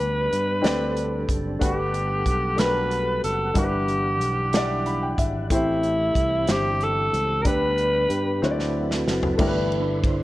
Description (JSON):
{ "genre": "slow gospel", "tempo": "62 BPM (dotted quarters)", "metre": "6/8", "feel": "straight", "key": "G major", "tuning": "A4 = 440 Hz", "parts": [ { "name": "growling alto saxophone", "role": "melody", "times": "0.0-8.4 s", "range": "E4 to B4", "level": "-24 LUFS", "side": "equal", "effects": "none" }, { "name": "warm baby grand piano", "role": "accompaniment", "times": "0.0-10.2 s", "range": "G2 to B5", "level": "-27 LUFS", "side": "left 2 dB", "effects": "none" }, { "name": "mellow tonewheel organ", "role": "sustained chords", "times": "0.0-10.2 s", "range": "E3 to F#5", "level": "-30 LUFS", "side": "right 2 dB", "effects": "slow rotary speaker, chorus vibrato" }, { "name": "fingered electric bass", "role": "bass", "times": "0.0-10.2 s", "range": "F#1 to G2", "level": "-28 LUFS", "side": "equal", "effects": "none" }, { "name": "natural country drum kit", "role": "drums", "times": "0.0-10.2 s", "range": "crash cymbal, hi-hat, kick drum, ride cymbal, snare drum, toms", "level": "-26 LUFS", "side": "equal", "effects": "none" } ], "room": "light reverb, studio ambience", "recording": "worn, warbling old tape, cassette tape, warbly pitch drift", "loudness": "-20 LUFS", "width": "side -16 dB against mid", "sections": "0.0-9.4 A section", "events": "grand piano fill 4.5-5.5; drum fill 8.4-9.4", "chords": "0.0 G/D; 0.6 D7sus4; 1.6 Gmaj9; 3.6 Em9/G; 5.5 Am7; 6.5 C/G; 7.5 G/D; 8.4 D13; 9.4 G69" }